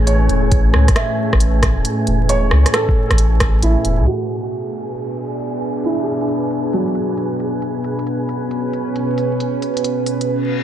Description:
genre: future garage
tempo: 135 BPM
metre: 4/4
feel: swing 66% on 16ths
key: B dorian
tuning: A4 = 442 Hz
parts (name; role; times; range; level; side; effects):
- dark upright piano; accompaniment; 0.0-10.6 s; F#3 to E5; -24 LUFS; right 2 dB; sidechain pumping, dub echo
- warbly tape-like pad; sustained chords; 0.0-10.6 s; A2 to B4; -20 LUFS; equal; chorus, built-in reverb, phaser, sidechain pumping
- soft dub sub bass; bass; 0.0-4.1 s; E1 to C#2; -14 LUFS; equal; sidechain pumping
- wind-like tuned noise texture; texture; 0.0-10.3 s; G#4; -28 LUFS; right 3 dB; built-in reverb
- organic electronic drum kit; drums; 0.1-10.3 s; hi-hat, rim click; -22 LUFS; equal; studio reverb
- electronic kick drum; drums; 0.5-3.5 s; none; -16 LUFS; equal; studio reverb
- downlifter and reverse cymbal; sound effects; 4.2-10.6 s; none; -37 LUFS; left 3 dB; none
room: light reverb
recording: echo-heavy mix, vinyl crackle, low-pass filter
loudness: -15 LUFS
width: side -10 dB against mid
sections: 0.0-4.1 A section; 4.1-10.6 B section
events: filter sweep 4.1-10.6; reverse cymbal 10.4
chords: 0.0 Amaj9; 4.1 Bm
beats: 0.07 | 0.52 0.96 1.41 1.85 | 2.29 2.74 3.18 3.63 | 4.07 4.52 4.96 5.41 | 5.85 6.29 6.74 7.18 | 7.63 8.07 8.52 8.96 | 9.41 9.85 10.29

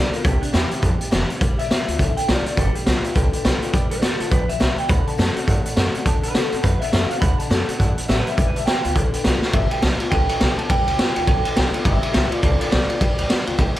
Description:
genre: rockabilly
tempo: 207 BPM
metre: 4/4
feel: swing 61% on 8ths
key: G mixolydian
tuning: A4 = 441 Hz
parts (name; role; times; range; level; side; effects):
- electric guitar through a small old amp; melody; 0.0-13.6 s; D4 to B5; -26 LUFS; equal; tape echo
- picked steel-string acoustic guitar; accompaniment; 0.0-13.8 s; G2 to F#4; -28 LUFS; left 5 dB; none
- upright bass; bass; 0.0-13.8 s; F1 to C3; -23 LUFS; equal; none
- raw garage drum kit; drums; 0.1-13.8 s; hi-hat, kick drum, ride cymbal, snare drum; -20 LUFS; equal; none
- clear upright piano; accompaniment; 2.6-13.8 s; A4 to A5; -32 LUFS; right 2 dB; none
room: light reverb, small room ambience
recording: none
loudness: -17 LUFS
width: side -14 dB against mid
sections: 0.0-9.5 A section; 9.5-13.8 B section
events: drum fill 9.4; clean electric guitar solo 9.5-13.8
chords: 0.3 C7; 1.4 G7; 4.9 D7; 8.4 G7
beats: | 0.25 0.54 0.83 1.12 | 1.41 1.70 1.99 2.28 | 2.58 2.87 3.15 3.45 | 3.74 4.03 4.32 4.61 | 4.90 5.19 5.48 5.77 | 6.06 6.35 6.64 6.93 | 7.22 7.51 7.80 8.09 | 8.38 8.67 8.96 9.25 | 9.54 9.83 10.12 10.41 | 10.70 10.99 11.28 11.57 | 11.86 12.14 12.43 12.72 | 13.01 13.30 13.59

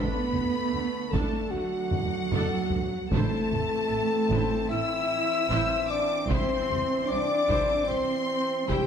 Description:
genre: cinematic, epic orchestral film score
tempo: 75 BPM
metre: 4/4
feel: straight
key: A dorian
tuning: A4 = 442 Hz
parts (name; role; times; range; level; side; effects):
- rich symphonic violin section; melody; 0.0-8.9 s; F#5 to E6; -38 LUFS; left 4 dB; none
- clear symphonic violin section; second line; 0.0-8.9 s; F#5 to E6; -36 LUFS; left 2 dB; none
- mellow hollow silver concert flute; second line; 0.0-8.9 s; F#5 to E6; -37 LUFS; left 2 dB; none
- rich symphonic viola section; accompaniment; 0.0-8.9 s; F#3 to C5; -38 LUFS; equal; none
- bright trombone section; sustained chords; 0.0-8.9 s; D3 to C4; -37 LUFS; right 4 dB; none
- mellow French horn section; sustained chords; 0.0-8.9 s; F#4 to E5; -29 LUFS; left 3 dB; none
- dark symphonic cello section; bass; 0.0-8.9 s; F#3 to E4; -32 LUFS; right 3 dB; none
- rich chamber double bass section; bass; 0.3-8.8 s; A1 to D2; -33 LUFS; right 5 dB; none
- taiko ensemble; drums; 0.3-8.9 s; none; -31 LUFS; equal; none
room: moderate scoring stage reverb, RT60 1.5 s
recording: none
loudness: -24 LUFS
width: side -7 dB against mid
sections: 0.0-8.9 A section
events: drum fill 1.9-3.1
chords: 0.0 D; 3.1 Am; 6.3 C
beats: 0.73 1.52 2.32 | 3.12 3.91 4.71 5.51 | 6.30 7.10 7.90 8.69

